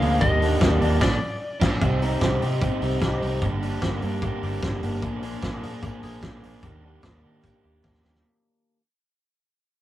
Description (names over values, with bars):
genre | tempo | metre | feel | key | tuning
jangly indie pop | 149 BPM | 4/4 | straight | Eb major | A4 = 439 Hz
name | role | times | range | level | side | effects
lightly driven lead guitar | melody | 0.0-1.6 s | D5 to F5 | -27 LUFS | left 1 dB | none
crunchy overdriven guitar | accompaniment | 0.0-8.2 s | G2 to Ab4 | -29 LUFS | right 3 dB | none
electric guitar through a small old amp | arpeggios | 0.0-8.8 s | G2 to Ab4 | -30 LUFS | left 2 dB | none
vintage muted fingered electric bass | bass | 0.0-8.2 s | G1 to Eb3 | -27 LUFS | equal | none
loose indie drum kit | drums | 0.0-8.2 s | crash cymbal, hi-hat, kick drum, snare drum | -26 LUFS | equal | none
room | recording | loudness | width
wet booth ambience, RT60 0.2 s | rough rehearsal-room recording | -21 LUFS | side -14 dB against mid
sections
0.0-1.8 A section; 1.8-8.2 B section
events
band accent 1.0-1.8; fade-out 1.8-8.2; drum fill 7.8-8.2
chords
0.2 Ebmaj7; 1.0 Bb; 1.8 Cm; 3.4 Gm; 5.0 Bb7; 6.6 Ebmaj7